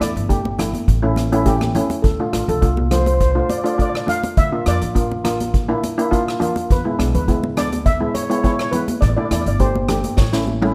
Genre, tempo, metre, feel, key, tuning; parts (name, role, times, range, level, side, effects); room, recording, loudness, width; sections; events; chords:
calypso; 103 BPM; 4/4; straight; D minor; A4 = 441 Hz
steel pan; melody; 0.0-10.7 s; A4 to F5; -26 LUFS; equal
steel pan; accompaniment; 0.0-10.7 s; G#3 to G4; -23 LUFS; equal
upright bass; bass; 0.0-10.7 s; G1 to F2; -24 LUFS; equal
street-band drum kit; drums; 0.0-10.7 s; hi-hat, kick drum, rim click, snare drum, toms; -24 LUFS; equal
congas; percussion; 0.2-10.6 s; -29 LUFS; equal
light reverb, small room ambience; rough home demo mix; -18 LUFS; mono
0.0-10.7 A section
drum fill 10.2-10.7
0.0 A7sus4; 0.9 A7; 2.0 Dm7; 4.4 Bbmaj7; 6.7 E7; 9.0 Asus4; 10.2 A